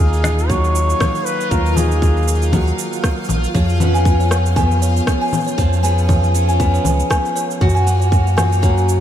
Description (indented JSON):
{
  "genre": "folktronica",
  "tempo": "118 BPM",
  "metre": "4/4",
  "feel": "swing 56% on 16ths",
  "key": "Db mixolydian",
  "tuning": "A4 = 440 Hz",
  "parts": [
    { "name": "warm flugelhorn", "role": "melody", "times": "0.0-2.8 s", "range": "Ab4 to Db5", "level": "-23 LUFS", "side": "equal", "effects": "diffuse ambient delay" },
    { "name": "picked steel-string acoustic guitar", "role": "arpeggios", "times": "0.0-9.0 s", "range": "Gb2 to Ab4", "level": "-22 LUFS", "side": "equal", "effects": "low-pass filter, diffuse ambient delay" },
    { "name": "warm sub bass", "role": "bass", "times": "0.0-9.0 s", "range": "Bb1 to Gb2", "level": "-16 LUFS", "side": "equal", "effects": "tube saturation" },
    { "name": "backwards swelling texture", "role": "texture", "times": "0.0-9.0 s", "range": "F4 to F5", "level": "-26 LUFS", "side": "equal", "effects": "built-in reverb, wide subtle chorus" },
    { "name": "electronic cabasa, rim click and congas", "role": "drums", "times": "0.1-9.0 s", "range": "none", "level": "-24 LUFS", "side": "left 2 dB", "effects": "studio ambience" },
    { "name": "electronic kick drum", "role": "drums", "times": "0.5-8.7 s", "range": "none", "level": "-17 LUFS", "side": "equal", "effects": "studio ambience" },
    { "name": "music box", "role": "second line", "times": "3.6-8.7 s", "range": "Db5 to Ab5", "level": "-21 LUFS", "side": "left 1 dB", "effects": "diffuse ambient delay" }
  ],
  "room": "moderate huge ambient reverb, RT60 4.2 s",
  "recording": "dreamy mix soaked in reverb",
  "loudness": "-14 LUFS",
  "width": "side -10 dB against mid",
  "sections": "0.0-9.0 A section",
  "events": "none",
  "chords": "0.0 Ebmadd9; 3.5 Db7/F; 7.6 Gb",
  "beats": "0.50 1.01 | 1.51 2.02 2.53 3.04 | 3.55 4.06 4.57 5.07 | 5.58 6.09 6.60 7.11 | 7.62 8.12 8.63"
}